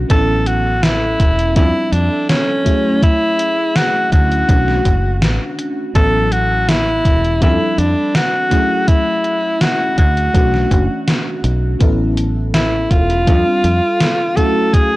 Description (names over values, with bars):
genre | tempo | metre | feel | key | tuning
vaporwave | 82 BPM | 4/4 | straight | A major | A4 = 439 Hz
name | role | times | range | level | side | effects
FM electric piano with soft pad layer | accompaniment | 0.0-15.0 s | E3 to A4 | -21 LUFS | equal | tremolo, analog chorus, tape echo
fingered electric bass | bass | 0.0-13.8 s | E1 to F2 | -17 LUFS | equal | none
bright alto saxophone | melody | 0.1-15.0 s | C#4 to A4 | -17 LUFS | equal | tape echo
electronic kick drum | drums | 0.1-14.9 s | none | -14 LUFS | equal | none
gated 80s digital drum machine | drums | 0.1-14.9 s | hi-hat, snare drum | -19 LUFS | equal | gated reverb, gated reverb snare, overdrive
room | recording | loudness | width
little or no reverb | dry, gritty hardware recording, cassette tape | -12 LUFS | side -18 dB against mid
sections
0.0-15.0 A section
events
none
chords
0.1 A69; 1.6 F6; 2.7 Dmaj9#11; 4.5 Bm11; 6.0 A69; 7.4 F6; 8.5 Dmaj9#11; 10.3 Bm11; 11.8 A69; 13.3 F6; 14.4 Dmaj9#11 (rootless)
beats
| 0.10 0.83 1.56 2.29 | 3.03 3.76 4.49 5.22 | 5.95 6.68 7.42 8.15 | 8.88 9.61 10.34 11.07 | 11.81 12.54 13.27 14.00 | 14.73